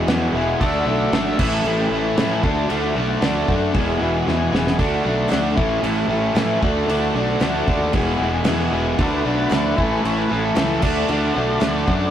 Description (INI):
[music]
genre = classic rock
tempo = 114 BPM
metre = 4/4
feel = straight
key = unclear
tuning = A4 = 440 Hz
[part]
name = tonewheel organ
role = sustained chords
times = 0.0-12.1 s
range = B3 to A#4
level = -34 LUFS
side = equal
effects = none
[part]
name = crunchy overdriven guitar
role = riff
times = 0.0-12.1 s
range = E2 to D4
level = -22 LUFS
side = equal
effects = none
[part]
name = distorted electric guitar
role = riff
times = 0.0-12.1 s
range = E2 to G#4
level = -28 LUFS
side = right 5 dB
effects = distortion
[part]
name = overdriven semi-hollow guitar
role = riff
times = 0.0-12.1 s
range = E2 to G#4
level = -25 LUFS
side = left 4 dB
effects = none
[part]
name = fuzz fingered electric bass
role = bass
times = 0.0-12.1 s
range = E1 to A2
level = -25 LUFS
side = right 1 dB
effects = overdrive
[part]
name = damped 70s drum kit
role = drums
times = 0.1-12.0 s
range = crash cymbal, kick drum, snare drum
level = -24 LUFS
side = equal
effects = none
[part]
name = octave-fuzz lead guitar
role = second line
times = 0.6-2.4, 9.0-12.1 s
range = E4 to E5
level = -28 LUFS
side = left 2 dB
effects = distortion
[part]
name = group handclap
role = percussion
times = 5.3-11.7 s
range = none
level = -38 LUFS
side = right 2 dB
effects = none
[sound]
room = moderate studio reverb, RT60 0.5 s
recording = rough rehearsal-room recording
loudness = -17 LUFS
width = side -10 dB against mid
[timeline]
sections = 0.0-12.1 A section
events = drum fill 4.3-4.8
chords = 0.0 E; 0.6 D; 1.4 A; 2.4 D; 3.7 E; 4.8 D; 5.6 A; 6.6 D; 7.9 E; 9.0 D; 9.8 A; 10.8 D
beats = 0.08 | 0.60 1.13 1.65 2.17 | 2.69 3.22 3.74 4.26 | 4.79 5.31 5.84 6.36 | 6.88 7.41 7.93 8.46 | 8.98 9.51 10.04 10.56 | 11.09 11.62